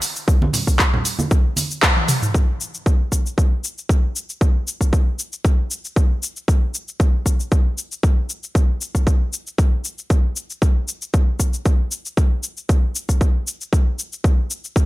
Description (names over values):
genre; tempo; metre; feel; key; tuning
nu-disco; 116 BPM; 4/4; swing 53% on 16ths; none; none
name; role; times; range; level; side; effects
house drum kit; drums; 0.0-14.9 s; cabasa, handclaps, hi-hat, toms; -22 LUFS; left 1 dB; overdrive
egg shaker and congas; percussion; 0.0-2.3 s; none; -24 LUFS; right 2 dB; none
electronic kick drum; drums; 0.3-14.9 s; none; -16 LUFS; equal; overdrive
room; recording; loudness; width
digital ambience; none; -17 LUFS; side -18 dB against mid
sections
0.0-2.3 A section; 2.3-14.9 B section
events
band accent 1.8; drum fill 2.0-2.3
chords
none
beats
| 0.28 0.79 1.31 1.83 | 2.35 2.86 3.38 3.90 | 4.41 4.93 5.45 5.96 | 6.48 7.00 7.52 8.03 | 8.55 9.07 9.59 10.10 | 10.62 11.14 11.65 12.17 | 12.69 13.21 13.72 14.24 | 14.76